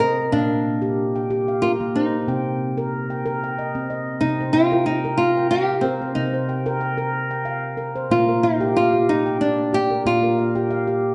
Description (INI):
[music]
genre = world meditative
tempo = 92 BPM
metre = 3/4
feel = swing 53% on 16ths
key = C minor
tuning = A4 = 439 Hz
[part]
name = nylon-string guitar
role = melody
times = 0.0-11.0 s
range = C4 to Bb4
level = -23 LUFS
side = equal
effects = none
[part]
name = handpan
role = arpeggios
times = 0.0-11.1 s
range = Bb2 to G5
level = -25 LUFS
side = equal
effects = none
[sound]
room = wet recital hall reverb, RT60 1.6 s, small room ambience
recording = nothing above 10.7 kHz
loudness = -21 LUFS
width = mono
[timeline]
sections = 0.0-4.2 A section; 4.2-11.1 B section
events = none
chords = 0.3 Bb; 2.3 Cm; 8.1 Bb5